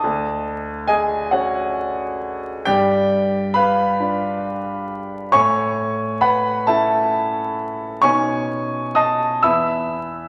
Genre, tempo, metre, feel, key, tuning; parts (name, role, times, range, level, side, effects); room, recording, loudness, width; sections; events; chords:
classical, impressionist solo piano; 45 BPM (dotted quarters); 6/8; rubato; A4 = 441 Hz
warm concert grand piano; solo; 0.0-10.3 s; D2 to E6; -20 LUFS; equal
wet scoring stage reverb, RT60 1.9 s; vinyl crackle, faint mains hum; -20 LUFS; mono
0.0-10.3 A section
0.0 Dmaj7#11; 2.7 G7; 5.3 Amaj9; 8.0 B9; 9.4 E5